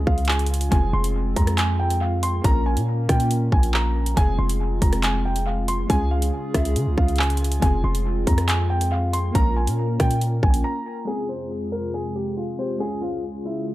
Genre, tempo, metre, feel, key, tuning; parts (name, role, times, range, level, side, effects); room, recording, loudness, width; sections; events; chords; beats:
hip hop, drill; 139 BPM; 4/4; half-time; F minor; A4 = 441 Hz
warbly lo-fi synth keys; accompaniment; 0.0-13.7 s; Ab3 to Bb4; -30 LUFS; left 2 dB; chorus
hollow soft pad; sustained chords; 0.0-13.7 s; Db2 to Ab4; -32 LUFS; right 1 dB; chorus
hard-hitting 808-style bass; bass; 0.0-10.6 s; F1 to Db3; -22 LUFS; equal
dark grand piano; melody; 0.1-13.6 s; E4 to C6; -28 LUFS; equal; analog delay
drill drum kit; drums; 0.1-10.6 s; handclaps, hi-hat, kick drum, rim click; -22 LUFS; equal
digital ambience; echo-heavy mix, low-pass filter; -20 LUFS; side -16 dB against mid
0.0-11.1 A section; 11.1-13.7 B section
break 10.6-11.1; filter sweep 11.1-13.7
0.0 Db; 0.7 Fm; 2.4 Bbm; 4.2 Fm; 5.9 Db; 7.6 Fm; 9.4 Bbm; 11.1 Fm; 12.8 Db
0.29 | 0.72 1.15 1.58 2.01 | 2.44 2.88 3.31 3.74 | 4.17 4.60 5.03 5.47 | 5.90 6.33 6.76 7.19 | 7.62 8.06 8.49 8.92 | 9.35 9.78 10.21 10.65 | 11.08 11.51 11.94 12.37 | 12.80 13.24 13.67